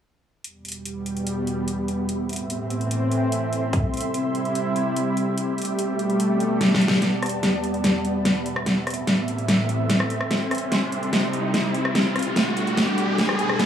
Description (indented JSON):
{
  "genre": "heavy wobble dubstep",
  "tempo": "146 BPM",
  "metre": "4/4",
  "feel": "half-time",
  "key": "E minor",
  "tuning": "A4 = 441 Hz",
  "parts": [
    { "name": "lush unison pad", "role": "sustained chords", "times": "0.8-13.7 s", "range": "E2 to E4", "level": "-26 LUFS", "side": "equal", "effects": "chorus, sidechain pumping" },
    { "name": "dubstep drum kit", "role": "drums", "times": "0.4-13.7 s", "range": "hi-hat, rim click, snare drum", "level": "-23 LUFS", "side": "equal", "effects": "studio ambience" },
    { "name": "ethereal airy pad", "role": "texture", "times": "1.0-13.7 s", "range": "B3 to C6", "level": "-27 LUFS", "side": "equal", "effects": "ensemble chorus, built-in reverb, sidechain pumping" },
    { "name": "electronic kick drum", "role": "drums", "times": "3.7-3.8 s", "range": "none", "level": "-23 LUFS", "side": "equal", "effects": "studio ambience" },
    { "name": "riser", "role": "sound effects", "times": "8.9-13.7 s", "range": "none", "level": "-29 LUFS", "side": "equal", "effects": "none" }
  ],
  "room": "moderate lush hall reverb, RT60 1.5 s, digital ambience",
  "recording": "small room ambience",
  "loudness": "-20 LUFS",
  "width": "side -9 dB against mid",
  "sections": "0.4-7.0 A section; 7.0-13.7 B section",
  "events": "kick drops out 6.6-7.0; drum fill 6.6-7.0, 7.0-13.7; build-up 7.0-13.7; riser 8.9-13.7",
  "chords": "0.4 Em; 2.1 Am; 3.7 C; 5.4 Gadd9; 7.0 Em; 8.7 Am; 10.3 C; 12.0 Gadd9",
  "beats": "| 0.44 0.85 1.27 1.68 | 2.09 2.50 2.91 3.32 | 3.73 4.14 4.55 4.96 | 5.38 5.79 6.20 6.61 | 7.02 7.43 7.84 8.25 | 8.66 9.07 9.48 9.90 | 10.31 10.72 11.13 11.54 | 11.95 12.36 12.77 13.18 | 13.60"
}